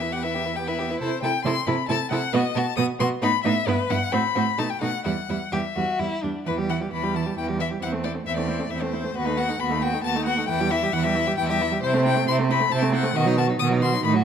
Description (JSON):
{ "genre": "quick classical-period movement for string quartet", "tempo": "135 BPM", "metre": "3/4", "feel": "rubato", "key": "E minor", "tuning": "A4 = 439 Hz", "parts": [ { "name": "rich violin", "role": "melody", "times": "0.0-14.1 s", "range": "B4 to D#6", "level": "-26 LUFS", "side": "left 8 dB", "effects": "none" }, { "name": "warm violin", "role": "second line", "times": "0.0-14.2 s", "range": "C4 to B4", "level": "-29 LUFS", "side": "left 2 dB", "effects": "none" }, { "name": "rich viola", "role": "accompaniment", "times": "0.0-14.2 s", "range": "D#3 to E4", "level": "-28 LUFS", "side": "right 4 dB", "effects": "none" }, { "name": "rich cello", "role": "bass", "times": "0.0-14.2 s", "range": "D#2 to C3", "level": "-26 LUFS", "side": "right 4 dB", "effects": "none" } ], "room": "light reverb", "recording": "close, detailed microphones", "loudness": "-21 LUFS", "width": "side -8 dB against mid", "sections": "0.0-6.5 A section; 6.5-14.2 A section", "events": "none", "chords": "0.0 Em; 1.0 Am/C; 2.3 B5; 3.2 B7/A; 3.7 Em; 4.1 F#dim; 4.6 B7(no3); 5.1 Em; 7.8 Am/E; 9.2 B7/D#; 10.5 Em; 11.8 Am/C; 13.2 B" }